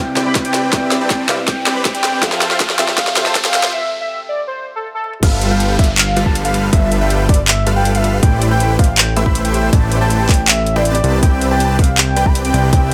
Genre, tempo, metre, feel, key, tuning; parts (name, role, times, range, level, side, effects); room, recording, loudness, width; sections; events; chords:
future bass; 160 BPM; 4/4; half-time; A4 = 443 Hz
warm velvety synth lead; melody; 0.0-12.9 s; A4 to B5; -23 LUFS; equal; chorus, sidechain pumping, dub echo
felt-muted upright piano; accompaniment; 0.0-5.2 s; C3 to G5; -26 LUFS; equal; sidechain pumping, digital delay
riser and downlifter; sound effects; 0.1-8.2 s; -28 LUFS; equal
dense compressed supersaw; riff; 0.2-12.9 s; G3 to C6; -22 LUFS; equal; sidechain pumping
trap drum kit; drums; 0.2-12.9 s; crash cymbal, handclaps, hi-hat, snare drum, toms; -19 LUFS; equal; high-pass filter on snare, small room ambience, high-pass filter on hats, high-pass filter on toms, high-pass filter on cymbals
electronic kick drum; drums; 0.4-12.8 s; -16 LUFS; equal; small room ambience
fat analog bass; bass; 5.2-12.9 s; G1 to C2; -19 LUFS; equal; sidechain pumping
moderate digital room reverb, RT60 1.1 s, digital ambience; high-pass filter; -15 LUFS; mono
0.0-5.2 A section; 5.2-12.9 B section
build-up 0.0-5.2; drum fill 0.0-3.7, 5.0; filter sweep on supersaw synth 0.0-5.2; break 3.7-5.2; drop 5.2-12.9
0.0 Cmaj9; 2.2 Fmaj7; 5.2 G13; 8.2 Am11; 11.0 Cmaj9